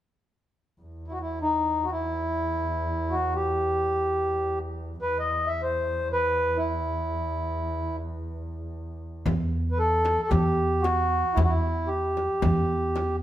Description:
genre	Arabic maqam ensemble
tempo	free time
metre	none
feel	none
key	E maqam nahawand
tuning	A4 = 439 Hz
part	muted double bass	drone	0.8-9.3 s	E2	-33 LUFS	equal	none
part	mellow accordion	melody	1.1-13.2 s	D#4 to E5	-25 LUFS	equal	none
part	upright bass	bass	9.3-13.2 s	E2	-26 LUFS	right 1 dB	none
part	darbuka	percussion	9.3-13.1 s	none	-30 LUFS	right 1 dB	none
part	frame drum	percussion	9.3-13.1 s	none	-33 LUFS	left 5 dB	none
room	moderate stone room reverb, RT60 1.3 s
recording	band playing live in one room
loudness	-24 LUFS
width	side -12 dB against mid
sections	0.8-9.3 A section; 9.3-13.2 B section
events	none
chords	none

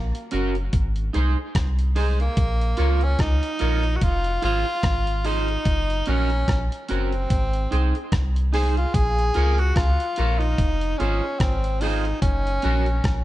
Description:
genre	roots reggae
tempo	73 BPM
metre	4/4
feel	swing 58% on 16ths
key	Bb minor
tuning	A4 = 439 Hz
part	breathy tenor saxophone	melody	0.0-13.2 s	Ab3 to Ab4	-26 LUFS	equal	tape echo
part	soft dub sub bass	bass	0.0-13.2 s	F1 to Db2	-22 LUFS	equal	none
part	dusty soul sampler-style drum kit	drums	0.1-13.2 s	hi-hat, kick drum, rim click	-24 LUFS	equal	none
part	electric guitar at the edge of break-up	accompaniment	0.3-12.9 s	Db4 to Db5	-29 LUFS	right 3 dB	lush chorus, tape echo
room	light reverb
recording	dark, warm production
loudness	-20 LUFS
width	side -15 dB against mid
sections	0.0-13.2 A section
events	none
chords	0.0 Gb; 0.7 Ab; 2.4 Bbm; 4.0 Fm; 5.7 Gb; 7.3 Ab; 8.9 Bbm; 10.6 Fm; 12.2 Gb

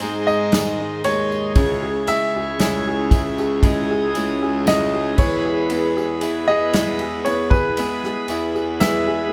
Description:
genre	pop ballad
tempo	58 BPM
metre	4/4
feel	straight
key	C# minor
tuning	A4 = 440 Hz
part	clear baby grand piano	melody	0.0-9.3 s	B4 to E5	-25 LUFS	equal	none
part	warm grand piano	accompaniment	0.0-9.3 s	C#3 to G#4	-28 LUFS	equal	none
part	bright tonewheel organ	sustained chords	0.0-9.3 s	E4 to D#6	-32 LUFS	equal	slow rotary speaker
part	direct-recorded clean electric guitar	arpeggios	0.0-9.3 s	G#2 to G#4	-30 LUFS	equal	none
part	mellow baritone saxophone	bass	0.0-9.3 s	C#2 to G#2	-26 LUFS	equal	none
part	natural country drum kit	drums	0.0-9.1 s	crash cymbal, kick drum, ride cymbal, snare drum	-23 LUFS	equal	none
part	tambourine	percussion	0.0-9.0 s	none	-39 LUFS	equal	none
room	moderate studio reverb, RT60 0.8 s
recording	band playing live in one room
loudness	-20 LUFS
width	mono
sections	0.0-9.3 A section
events	none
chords	0.0 G#; 1.6 C#m; 5.2 E

